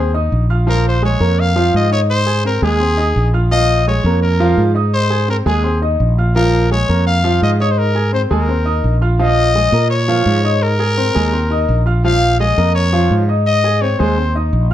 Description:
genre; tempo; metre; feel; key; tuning
latin, salsa; 169 BPM; 4/4; straight; Bb minor; A4 = 440 Hz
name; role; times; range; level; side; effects
growling trumpet; melody; 0.0-14.4 s; Ab4 to F5; -18 LUFS; left 2 dB; plate reverb
clear baby grand piano; accompaniment; 0.0-14.7 s; F3 to Ab6; -18 LUFS; equal; none
mellow fretless electric bass; bass; 0.0-14.7 s; Bb1 to Bb2; -15 LUFS; equal; none
room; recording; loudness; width
moderate studio reverb, RT60 0.5 s; dark, warm production; -12 LUFS; side -12 dB against mid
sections
0.0-9.2 A section; 9.2-14.7 A section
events
none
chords
0.0 Abadd9 (rootless); 0.7 Bbm7; 2.1 Abadd9; 3.5 Bbm7; 4.9 Abadd9; 6.4 Bbm7; 7.8 Abadd9; 9.2 Bbm7; 10.6 Abadd9; 12.0 Bbm7; 13.5 Abadd9

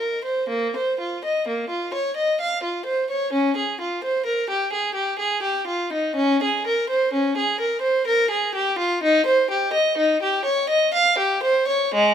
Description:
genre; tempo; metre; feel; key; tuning
classical, baroque-style suite movement for unaccompanied violin; 63 BPM; 3/4; rubato; unclear; A4 = 440 Hz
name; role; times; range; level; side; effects
rich violin; solo; 0.0-12.1 s; Ab3 to F5; -19 LUFS; equal; none
room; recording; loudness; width
moderate stone room reverb, RT60 1.4 s; close, detailed microphones; -19 LUFS; side -8 dB against mid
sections
0.0-12.1 A section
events
none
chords
none

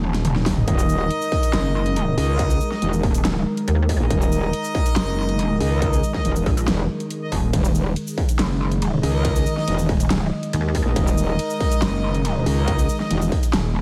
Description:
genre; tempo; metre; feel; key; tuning
heavy wobble dubstep; 140 BPM; 4/4; half-time; Eb minor; A4 = 440 Hz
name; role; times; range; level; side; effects
evolving wavetable pad; sustained chords; 0.0-13.8 s; Eb3 to Eb5; -30 LUFS; equal; chorus, built-in reverb, sidechain pumping
pulsing pluck wobble bass; bass; 0.0-13.8 s; Eb1 to Eb2; -24 LUFS; equal; chorus, overdrive
dubstep drum kit; drums; 0.0-13.6 s; hi-hat, ride cymbal, shaker, snare drum, toms; -30 LUFS; equal; studio reverb
clear brass ensemble; stabs; 0.5-13.2 s; Eb4 to Eb5; -30 LUFS; equal; delay
electronic kick drum; drums; 0.5-13.4 s; none; -24 LUFS; equal; distortion, studio reverb
metallic wobble bass; bass; 0.7-13.3 s; Eb1 to Db2; -23 LUFS; equal; distortion, chorus, overdrive
room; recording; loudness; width
light reverb; none; -21 LUFS; mono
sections
0.0-13.8 A section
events
drum fill 0.0-0.7; kick drops out 13.5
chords
0.0 Eb5

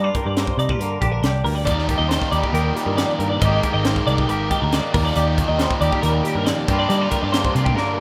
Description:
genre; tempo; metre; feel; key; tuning
math rock and midwest emo; 138 BPM; 4/4; straight; Eb major; A4 = 440 Hz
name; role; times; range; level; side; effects
twangy electric guitar; accompaniment; 0.0-8.0 s; Eb2 to G4; -28 LUFS; equal; none
twelve-string electric guitar; arpeggios; 0.0-8.0 s; G4 to Eb5; -26 LUFS; equal; ensemble chorus, slapback echo
picked electric bass; bass; 0.0-8.0 s; Ab1 to G3; -24 LUFS; equal; none
crisp fusion drum kit; drums; 0.1-7.9 s; hi-hat, kick drum, snare drum; -27 LUFS; equal; none
biting overdriven guitar; riff; 1.7-8.0 s; Eb2 to G4; -27 LUFS; equal; none
room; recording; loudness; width
little or no reverb; rough home demo mix; -20 LUFS; mono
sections
0.0-8.0 A section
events
drum fill 7.8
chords
0.0 Gm7; 1.7 Ebmaj7; 3.4 Abmaj9; 4.9 Ebmaj7; 6.7 Gm7

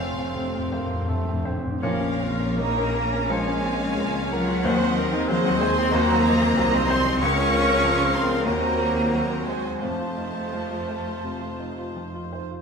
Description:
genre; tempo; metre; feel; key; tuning
classical, romantic movement for piano and orchestra; 75-97 BPM; 4/4; rubato; Bb minor; A4 = 440 Hz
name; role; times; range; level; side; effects
clear baby grand piano; melody; 0.0-12.6 s; Db2 to C5; -27 LUFS; left 3 dB; none
clear studio violin section; melody; 0.0-12.5 s; C5 to F5; -38 LUFS; left 1 dB; none
mellow clarinet; second line; 0.0-12.3 s; Bb4 to Db5; -34 LUFS; left 2 dB; none
mellow small flute group; second line; 0.0-12.0 s; Eb5 to Db6; -31 LUFS; right 4 dB; none
rich studio violin section; second line; 0.0-11.9 s; F4 to Db6; -32 LUFS; left 1 dB; none
rich studio viola section; accompaniment; 0.0-12.5 s; A3 to Db5; -31 LUFS; right 1 dB; none
warm bassoon; accompaniment; 0.0-12.3 s; Eb3 to Db4; -35 LUFS; right 2 dB; none
dark studio double bass section; bass; 0.0-12.4 s; F1 to F2; -32 LUFS; right 2 dB; none
mellow tuba; bass; 0.0-12.4 s; F1 to Eb2; -33 LUFS; right 3 dB; none
rich studio cello section; bass; 0.0-12.0 s; F2 to Db4; -28 LUFS; equal; none
timpani; percussion; 0.0-2.9, 9.8-10.9 s; F2 to Bb2; -31 LUFS; left 1 dB; none
mellow French horn section; sustained chords; 0.3-12.6 s; A3 to C5; -34 LUFS; left 3 dB; none
room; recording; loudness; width
wet stone room reverb, RT60 1.1 s; minimal, uncompressed stereo recording; -21 LUFS; side -5 dB against mid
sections
0.0-1.8 A section; 1.8-12.6 B section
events
timpani fill 0.0-1.8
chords
0.0 F; 1.8 Bbm; 4.7 Cdim/Eb; 7.2 Bbm/Db; 8.5 Cm7b5/Eb; 9.8 F

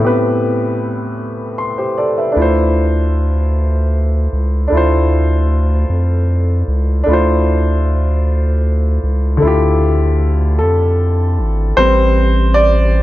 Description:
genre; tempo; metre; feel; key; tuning
slow six-eight R&B; 51 BPM (dotted quarters); 6/8; straight; unclear; A4 = 440 Hz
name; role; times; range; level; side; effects
warm grand piano; accompaniment; 0.0-13.0 s; A2 to C6; -16 LUFS; equal; none
round analog bass; bass; 2.4-13.0 s; G#1 to F2; -14 LUFS; equal; none
room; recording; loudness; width
light reverb; none; -12 LUFS; side -15 dB against mid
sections
0.0-11.8 A section; 11.8-13.0 B section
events
grand piano fill 1.2-2.4; grand piano solo 11.8-13.0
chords
0.0 Am9; 2.4 Dm9; 11.8 Am9

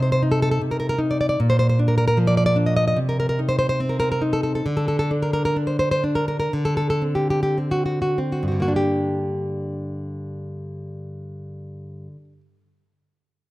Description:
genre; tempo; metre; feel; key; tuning
romantic piece for solo classical guitar; 46-80 BPM; 4/4; rubato; G minor; A4 = 440 Hz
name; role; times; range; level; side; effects
nylon-string guitar; solo; 0.0-12.4 s; G2 to Eb5; -20 LUFS; equal; none
room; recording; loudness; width
moderate recital hall reverb, RT60 1.6 s; close, detailed microphones; -19 LUFS; side -18 dB against mid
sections
0.0-8.8 A section; 8.8-13.3 B section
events
slowing down 0.0-8.8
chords
0.0 N.C.; 1.4 Bb; 3.0 Cm7; 4.7 N.C.; 6.5 D7; 8.8 Gm

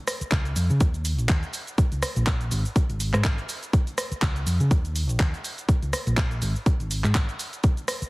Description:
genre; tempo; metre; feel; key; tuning
filtered disco house; 123 BPM; 4/4; swing 56% on 16ths; unclear; A4 = 440 Hz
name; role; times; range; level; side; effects
house drum kit; drums; 0.1-8.1 s; handclaps, hi-hat, rim click, shaker; -29 LUFS; equal; sidechain pumping on hats, sidechain pumping on perc
hollow-body short-scale fingered electric bass; bass; 0.2-8.0 s; Ab1 to Db3; -25 LUFS; equal; tube saturation, sidechain pumping
electronic kick drum; drums; 0.3-7.7 s; none; -22 LUFS; equal; none
room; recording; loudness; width
little or no reverb; heavily compressed radio sound, multiband compression; -22 LUFS; side -23 dB against mid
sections
0.0-8.1 A section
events
none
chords
none

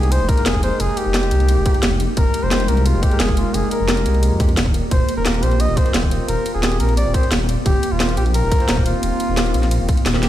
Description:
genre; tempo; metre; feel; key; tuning
liquid drum and bass; 175 BPM; 4/4; straight; F dorian; A4 = 438 Hz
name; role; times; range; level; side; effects
warm flugelhorn; melody; 0.0-10.0 s; F4 to Eb5; -24 LUFS; left 1 dB; ping-pong delay
bell-like tine electric piano; accompaniment; 0.0-10.3 s; Ab3 to C5; -26 LUFS; equal; analog chorus, ping-pong delay
glassy FM pad; sustained chords; 0.1-10.3 s; Ab3 to D5; -27 LUFS; left 1 dB; ensemble chorus, built-in reverb, sidechain pumping
dark detuned saw bass; bass; 0.0-10.3 s; Eb1 to F2; -19 LUFS; equal; tube saturation
drum and bass drum kit; drums; 0.0-10.3 s; hi-hat, ride cymbal, snare drum; -23 LUFS; equal; overdrive, small room ambience
electronic kick drum; drums; 0.3-10.0 s; none; -17 LUFS; equal; overdrive, small room ambience
room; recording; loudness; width
light reverb, digital ambience; played on a big sound system in a bare room, large studio reverb; -15 LUFS; side -13 dB against mid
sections
0.0-10.3 A section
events
none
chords
0.0 Fm11; 4.7 Eb69

